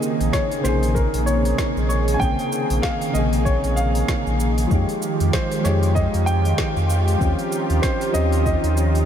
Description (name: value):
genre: sunset chillout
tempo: 96 BPM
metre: 4/4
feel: swing 58% on 16ths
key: Bb dorian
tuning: A4 = 442 Hz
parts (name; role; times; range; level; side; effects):
- dark concert grand piano; melody; 0.0-9.0 s; Bb4 to Ab5; -26 LUFS; left 1 dB; diffuse ambient delay
- soft electric-piano-like synth keys; accompaniment; 0.0-9.1 s; C3 to Ab4; -25 LUFS; moving between left 3 dB and right 4 dB; chorus, auto-pan, diffuse ambient delay
- lush unison pad; sustained chords; 0.0-9.1 s; Eb3 to Ab4; -26 LUFS; right 2 dB; chorus, phaser
- deep house drum kit; drums; 0.0-9.1 s; cabasa, hi-hat, snare drum; -31 LUFS; right 1 dB; none
- warm sub bass; bass; 0.2-9.0 s; Bb1 to F2; -20 LUFS; equal; tube saturation
- electronic kick drum; drums; 0.3-8.6 s; none; -24 LUFS; equal; none
room: moderate huge ambient reverb, RT60 8.8 s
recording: dreamy mix soaked in reverb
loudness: -18 LUFS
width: side -9 dB against mid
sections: 0.0-9.1 A section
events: none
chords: 0.0 Bbm9; 4.7 Fm9; 7.2 Eb13